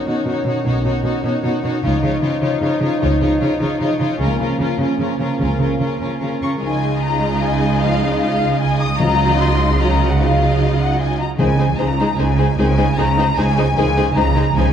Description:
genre	cinematic, heroic adventure film score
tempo	151 BPM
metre	3/4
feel	straight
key	Db major from 6.6 s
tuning	A4 = 437 Hz
part	clear symphonic violin section	melody	0.0-14.7 s	Bb4 to Eb6	-26 LUFS	left 3 dB	none
part	rich symphonic violin section	second line	0.0-14.7 s	F4 to Eb5	-26 LUFS	left 5 dB	none
part	warm symphonic viola section	accompaniment	0.0-14.6 s	Gb3 to Eb4	-23 LUFS	right 1 dB	none
part	warm French horn section	sustained chords	0.0-13.9 s	Eb3 to Eb4	-24 LUFS	left 2 dB	none
part	rich symphonic cello section	bass	0.1-14.7 s	Cb3 to Db3	-21 LUFS	right 2 dB	none
part	rich symphonic double bass section	bass	0.7-14.7 s	Cb2 to Db2	-20 LUFS	right 2 dB	none
part	mellow large flute ensemble	second line	6.4-14.7 s	F5 to Eb6	-22 LUFS	left 3 dB	none
part	timpani	percussion	9.0-14.7 s	Db3	-24 LUFS	left 1 dB	none
room	wet scoring stage reverb, RT60 1.9 s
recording	dark, warm production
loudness	-15 LUFS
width	side -8 dB against mid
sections	0.0-6.6 A section; 6.6-14.7 B section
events	build-up 0.0-6.6; timpani fill 13.8-14.7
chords	0.0 Cbadd9; 1.8 Dbadd9; 4.2 Bbm/Db; 6.6 Dbadd9; 9.0 Ebmadd9/Db; 11.4 Ab/Db

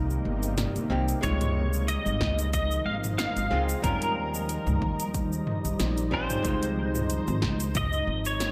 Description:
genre	sunset chillout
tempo	92 BPM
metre	4/4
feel	swing 55% on 16ths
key	Db lydian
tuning	A4 = 440 Hz
part	archtop guitar, miked and amplified	accompaniment	0.0-8.5 s	C3 to G4	-37 LUFS	equal	tape echo
part	shimmering ambient pad	sustained chords	0.0-8.5 s	C3 to Eb5	-35 LUFS	equal	chorus, built-in reverb
part	upright bass	bass	0.0-8.5 s	G1 to Eb2	-32 LUFS	equal	tube saturation
part	deep house drum kit	drums	0.1-8.5 s	hi-hat, shaker, snare drum, toms	-36 LUFS	equal	overdrive
part	pedal steel guitar	melody	1.2-8.5 s	Bb4 to F5	-34 LUFS	equal	ensemble chorus, analog delay
part	electronic kick drum	drums	1.2-7.9 s	none	-35 LUFS	equal	overdrive
room	moderate plate reverb, RT60 2.0 s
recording	dreamy mix soaked in reverb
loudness	-28 LUFS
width	mono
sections	0.0-8.5 A section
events	none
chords	0.0 Cm7; 1.2 Dbmaj9; 3.8 Eb13; 6.4 Dbmaj9

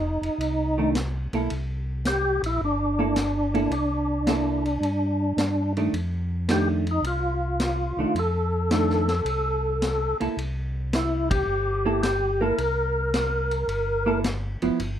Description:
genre	soul jazz organ trio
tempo	108 BPM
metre	4/4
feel	swing 69% on 8ths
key	unclear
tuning	A4 = 440 Hz
part	percussive tonewheel organ	melody	0.0-14.2 s	D4 to Bb4	-25 LUFS	equal	slow rotary speaker, overdrive, chorus vibrato
part	mellow tonewheel organ	bass	0.0-15.0 s	F1 to G2	-28 LUFS	equal	overdrive, chorus vibrato, slow rotary speaker
part	vintage drum kit	drums	0.2-15.0 s	hi-hat, kick drum, ride cymbal, snare drum	-31 LUFS	equal	none
part	vintage hollow-body jazz guitar	accompaniment	0.8-14.8 s	Eb3 to A4	-26 LUFS	right 3 dB	none
room	light reverb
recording	minimal, uncompressed stereo recording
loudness	-22 LUFS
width	side -10 dB against mid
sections	0.0-15.0 A section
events	band accent 11.2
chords	0.0 F; 1.5 C13; 5.9 F6; 10.4 C

